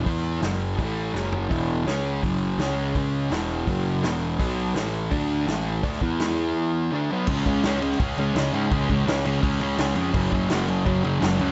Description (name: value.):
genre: garage rock duo or trio.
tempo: 166 BPM.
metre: 4/4.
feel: straight.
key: unclear.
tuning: A4 = 440 Hz.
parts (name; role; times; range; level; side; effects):
fuzz guitar; riff; 0.0-11.5 s; E2 to E4; -26 LUFS; equal; distortion.
fuzz picked electric bass; bass; 0.0-11.5 s; E1 to G#2; -32 LUFS; equal; overdrive.
vintage drum kit; drums; 0.1-11.5 s; crash cymbal, hi-hat, kick drum, snare drum, toms; -31 LUFS; equal; none.
room: light reverb.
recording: nothing above 7.9 kHz.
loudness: -24 LUFS.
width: mono.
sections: 0.0-7.3 A section; 7.3-11.5 B section.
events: drum fill 1.1-1.5.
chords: 0.4 F#5; 0.8 A5; 1.1 F#5; 1.5 E5; 1.9 C#5; 2.2 F#5; 2.6 C#5; 3.3 E5; 3.7 F#5; 4.0 E5; 4.4 B5; 4.8 A5; 5.1 D5; 5.5 A5; 5.8 D5; 6.0 E5; 6.9 B5; 7.3 C#5; 10.1 F#5.